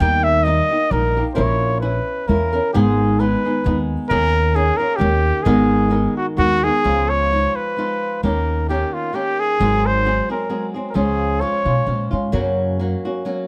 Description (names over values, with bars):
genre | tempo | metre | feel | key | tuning
mexican folk, mariachi | 131 BPM | 3/4 | swing 55% on 8ths, rubato | G# minor | A4 = 441 Hz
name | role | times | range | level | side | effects
mellow trumpet | melody | 0.0-12.1 s | F4 to G5 | -22 LUFS | equal | none
flamenco guitar | accompaniment | 0.0-13.5 s | Gb2 to A#4 | -24 LUFS | equal | none
upright bass | bass | 0.0-12.9 s | G#1 to Cb3 | -22 LUFS | equal | none
room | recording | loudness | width
light reverb | none | -19 LUFS | mono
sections
0.0-6.8 A section; 6.8-13.5 B section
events
none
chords
0.0 D#; 1.4 A#dim; 2.7 G#m; 4.1 D#7sus4; 5.0 D#7; 5.5 G#madd9; 6.8 Dbadd9; 8.2 Eb7; 9.6 Ab7; 11.0 Db; 12.3 Gb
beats
| 0.00 0.45 0.91 | 1.37 1.83 2.29 | 2.75 3.20 3.65 | 4.11 4.56 5.01 | 5.46 5.92 6.38 | 6.84 7.31 7.77 | 8.23 8.69 9.14 | 9.59 10.05 10.50 | 10.95 11.41 11.87 | 12.33 12.79 13.26